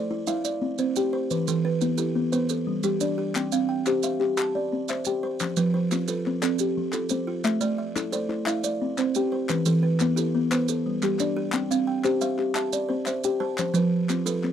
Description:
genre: southern african traditional, mbira-style interlocking cycle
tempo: 117 BPM (dotted quarters)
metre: 12/8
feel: straight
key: C major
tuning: A4 = 438 Hz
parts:
  - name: buzzing kalimba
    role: arpeggios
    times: 0.0-14.5 s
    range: E3 to G5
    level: -26 LUFS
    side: left 4 dB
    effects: none
  - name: buzzing kalimba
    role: arpeggios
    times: 0.0-14.5 s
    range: E3 to A5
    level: -26 LUFS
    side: right 5 dB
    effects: none
  - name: maracas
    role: percussion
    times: 0.3-14.4 s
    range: none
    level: -34 LUFS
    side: right 13 dB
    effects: none
  - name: group handclap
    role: percussion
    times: 3.4-14.5 s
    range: none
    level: -32 LUFS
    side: left 5 dB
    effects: none
room: light reverb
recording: dry, close 1970s-style studio recording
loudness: -23 LUFS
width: side -9 dB against mid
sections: 0.0-11.5 A section; 11.5-14.5 B section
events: none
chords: 0.3 C; 1.3 Em; 2.3 G; 3.4 C; 5.4 F; 7.4 Am; 8.5 C; 9.5 Em; 10.5 G; 11.5 C; 13.6 F

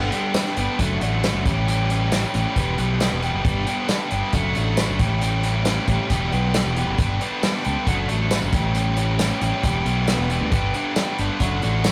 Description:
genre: indie rock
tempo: 136 BPM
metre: 4/4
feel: straight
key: A mixolydian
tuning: A4 = 440 Hz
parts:
  - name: overdriven electric guitar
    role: riff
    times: 0.0-11.9 s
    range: E2 to G4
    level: -26 LUFS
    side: equal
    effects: none
  - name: fingered electric bass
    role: bass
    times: 0.0-11.9 s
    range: E1 to D2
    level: -26 LUFS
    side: equal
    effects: none
  - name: loose indie drum kit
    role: drums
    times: 0.1-11.9 s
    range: hi-hat, kick drum, snare drum, tambourine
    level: -26 LUFS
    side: equal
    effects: none
room: moderate small room reverb, RT60 0.5 s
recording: rough rehearsal-room recording, warm saturation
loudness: -22 LUFS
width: mono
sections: 0.0-11.9 A section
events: none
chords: 0.0 G; 0.8 D/F#; 1.5 A5; 2.6 Em; 3.4 G; 4.3 D/F#; 5.0 A5; 6.1 Em; 7.0 G; 7.9 D/F#; 8.5 A5; 9.6 Em; 10.5 G; 11.4 D/F#

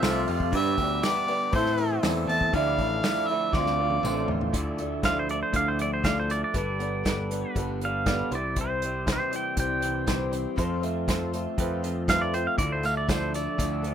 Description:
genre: folk rock and heartland rock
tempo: 120 BPM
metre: 4/4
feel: straight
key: D dorian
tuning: A4 = 437 Hz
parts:
  - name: overdriven harmonica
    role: melody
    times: 0.0-4.3 s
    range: C5 to A5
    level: -27 LUFS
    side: left 1 dB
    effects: none
  - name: pedal steel guitar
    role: second line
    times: 0.0-0.5, 5.1-13.9 s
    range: C5 to G5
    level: -29 LUFS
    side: right 2 dB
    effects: none
  - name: clear upright piano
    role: accompaniment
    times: 0.0-13.9 s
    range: D4 to F5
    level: -37 LUFS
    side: right 1 dB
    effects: none
  - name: picked twelve-string acoustic guitar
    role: accompaniment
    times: 0.0-13.9 s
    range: A2 to C5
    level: -37 LUFS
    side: left 7 dB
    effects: none
  - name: tonewheel organ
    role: sustained chords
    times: 0.0-13.9 s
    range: F3 to F5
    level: -39 LUFS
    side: equal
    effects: slow rotary speaker, overdrive
  - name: electric guitar through a small old amp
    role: riff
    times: 0.0-13.9 s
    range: F2 to A4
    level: -30 LUFS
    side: right 2 dB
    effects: wide subtle chorus
  - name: modern bright picked electric bass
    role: bass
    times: 0.0-13.9 s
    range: G1 to A2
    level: -31 LUFS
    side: equal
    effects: none
  - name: unplugged drum kit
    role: drums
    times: 0.0-13.9 s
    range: hi-hat, kick drum, snare drum, toms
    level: -30 LUFS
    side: equal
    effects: none
  - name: tambourine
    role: percussion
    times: 0.0-4.2, 12.6-13.7 s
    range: none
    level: -43 LUFS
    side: right 2 dB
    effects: none
room: little or no reverb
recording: rough home demo mix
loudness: -24 LUFS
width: side -9 dB against mid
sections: 0.0-4.6 A section; 4.6-13.9 B section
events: drum fill 3.5-4.6; pedal steel guitar solo 4.6-13.9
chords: 0.0 F; 0.5 G; 1.5 Am; 2.5 Dmadd9; 3.5 Dm7; 4.6 Dmadd9; 6.6 Gadd9; 8.3 C; 10.6 F; 12.6 Dmadd9

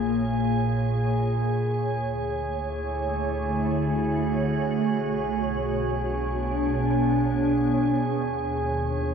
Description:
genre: ambient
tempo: 57 BPM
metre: 3/4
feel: straight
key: unclear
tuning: A4 = 437 Hz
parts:
  - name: glassy FM pad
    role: sustained chords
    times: 0.0-9.1 s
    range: Bb2 to Db5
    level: -24 LUFS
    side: equal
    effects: ensemble chorus, built-in reverb, phaser
  - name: warm sub bass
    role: bass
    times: 0.0-9.1 s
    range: Bb1 to Eb2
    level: -35 LUFS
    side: equal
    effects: none
  - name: glass harmonica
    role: texture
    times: 0.0-9.1 s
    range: Ab4 to Ab5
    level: -30 LUFS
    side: right 2 dB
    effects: none
room: wet huge ambient reverb, RT60 8.3 s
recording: none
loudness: -23 LUFS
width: side -6 dB against mid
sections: 0.0-9.1 A section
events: fade-in on sub bass 0.0-9.1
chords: 0.0 Bbm7; 1.7 Dmaj7; 4.9 Bm6; 8.1 Ebm7

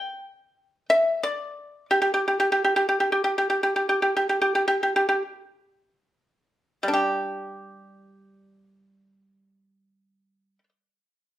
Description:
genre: chinese traditional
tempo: free time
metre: none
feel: none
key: unclear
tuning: A4 = 440 Hz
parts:
  - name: pipa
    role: solo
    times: 0.0-10.7 s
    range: G3 to G5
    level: -21 LUFS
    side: equal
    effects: none
room: moderate large studio reverb, RT60 0.9 s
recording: band playing live in one room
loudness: -21 LUFS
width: side -13 dB against mid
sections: 0.0-7.0 A section; 7.0-11.4 B section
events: slowing down 0.0-7.0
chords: none

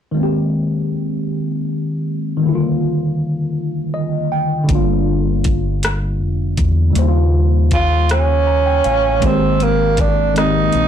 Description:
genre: slow six-eight R&B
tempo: 53 BPM (dotted quarters)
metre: 6/8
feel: straight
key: unclear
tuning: A4 = 440 Hz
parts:
  - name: tine electric piano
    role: accompaniment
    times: 0.1-10.9 s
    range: Db3 to Bb5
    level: -18 LUFS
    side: left 1 dB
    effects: phaser
  - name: deep dub fingered electric bass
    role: bass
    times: 4.7-10.9 s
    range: F1 to Fb2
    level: -17 LUFS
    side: left 1 dB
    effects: tube saturation
  - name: smooth R&B drum kit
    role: drums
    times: 4.7-10.9 s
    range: hi-hat, kick drum, rim click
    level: -19 LUFS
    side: left 1 dB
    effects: soft clipping on snare
  - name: warm tenor saxophone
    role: melody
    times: 7.7-10.9 s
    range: Bb3 to F4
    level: -16 LUFS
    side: right 5 dB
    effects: slapback echo, plate reverb
room: light reverb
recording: blown-out, overdriven recording, overdrive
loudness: -14 LUFS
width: side -9 dB against mid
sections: 0.2-9.2 A section; 9.2-10.9 B section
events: tine electric piano fill 3.6-4.7, 8.1-9.2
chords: 0.2 Abmaj9; 2.4 Ebmaj9; 4.7 Gm7; 7.0 Eb13; 9.2 Abmaj9

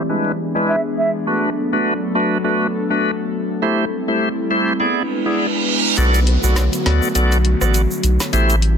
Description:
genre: dancehall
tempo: 102 BPM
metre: 4/4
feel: swing 56% on 16ths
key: B phrygian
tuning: A4 = 440 Hz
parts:
  - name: bright tonewheel organ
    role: accompaniment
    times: 0.0-8.6 s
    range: G#3 to D5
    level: -20 LUFS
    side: equal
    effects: slow rotary speaker, low-pass filter
  - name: airy breathy pad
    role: sustained chords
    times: 0.0-8.8 s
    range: C3 to B4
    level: -21 LUFS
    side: equal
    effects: chorus, low-pass filter
  - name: wooden flute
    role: melody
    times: 0.7-1.1 s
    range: E5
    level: -23 LUFS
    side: right 2 dB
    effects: low-pass filter, ping-pong delay
  - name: reverse cymbal and downlifter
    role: sound effects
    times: 5.1-8.8 s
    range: none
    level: -24 LUFS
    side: right 4 dB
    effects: none
  - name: saturated sub bass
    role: bass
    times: 6.0-8.8 s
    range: A1 to D2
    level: -15 LUFS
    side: equal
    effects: none
  - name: island pop drum kit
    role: drums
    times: 6.0-8.8 s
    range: hi-hat, rim click, snare drum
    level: -24 LUFS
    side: left 1 dB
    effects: none
  - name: egg shaker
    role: percussion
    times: 6.0-8.6 s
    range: none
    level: -28 LUFS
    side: right 3 dB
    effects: none
room: light reverb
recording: dense, heavily limited modern master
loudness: -15 LUFS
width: side -7 dB against mid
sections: 0.0-6.0 A section; 6.0-8.8 B section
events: filter sweep 0.0-6.0; reverse cymbal 5.1-6.0; kick muted 6.0-8.8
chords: 0.1 E7; 1.3 Bm7; 3.6 Am7; 4.8 E7; 6.0 Bm7

